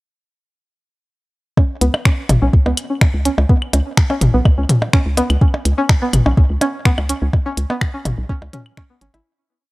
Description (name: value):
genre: minimal techno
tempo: 125 BPM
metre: 4/4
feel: straight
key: unclear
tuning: A4 = 440 Hz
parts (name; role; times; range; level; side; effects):
- string-like resonator pluck; riff; 1.6-9.2 s; B3 to E4; -22 LUFS; equal; chorus, sidechain pumping, tape echo
- electronic kick drum; drums; 1.6-8.9 s; none; -13 LUFS; equal; none
- electronic percussion blips, claves and toms; percussion; 1.6-9.2 s; none; -19 LUFS; equal; none
- hollow knocking FM bass; bass; 1.8-9.2 s; G#1 to C#2; -18 LUFS; equal; sidechain pumping
- minimal click drum kit; drums; 1.8-9.2 s; finger snaps, hi-hat; -22 LUFS; equal; none
room: digital ambience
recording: dry, gritty hardware recording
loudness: -14 LUFS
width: side -21 dB against mid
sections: 1.6-9.3 groove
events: filter sweep on synth pluck 1.6-9.3; fade-out 6.7-9.3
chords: 1.6 C#5